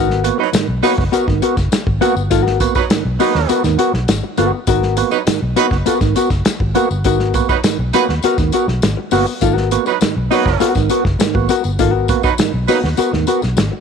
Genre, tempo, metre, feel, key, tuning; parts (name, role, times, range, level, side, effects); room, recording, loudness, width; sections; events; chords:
funk; 101 BPM; 4/4; straight; G# minor; A4 = 440 Hz
hollow-body jazz guitar; accompaniment; 0.0-13.8 s; B3 to B4; -18 LUFS; left 12 dB
percussive tonewheel organ; stabs; 0.0-13.4 s; G#2 to F#4; -20 LUFS; right 13 dB; overdrive, slow rotary speaker
vintage muted fingered electric bass; bass; 0.0-13.7 s; F#1 to D#2; -19 LUFS; equal; tube saturation
warm soul drum kit; drums; 0.1-13.7 s; hi-hat, kick drum, snare drum; -19 LUFS; equal
tambourine; percussion; 0.2-13.7 s; -30 LUFS; left 12 dB
warm horn section; second line; 0.4-12.8 s; F#3 to B4; -20 LUFS; right 12 dB
light reverb, small room ambience; 1960s-style stereo with parts hard left and right; -13 LUFS; side -6 dB against mid
0.0-13.8 A section
0.0 G#m9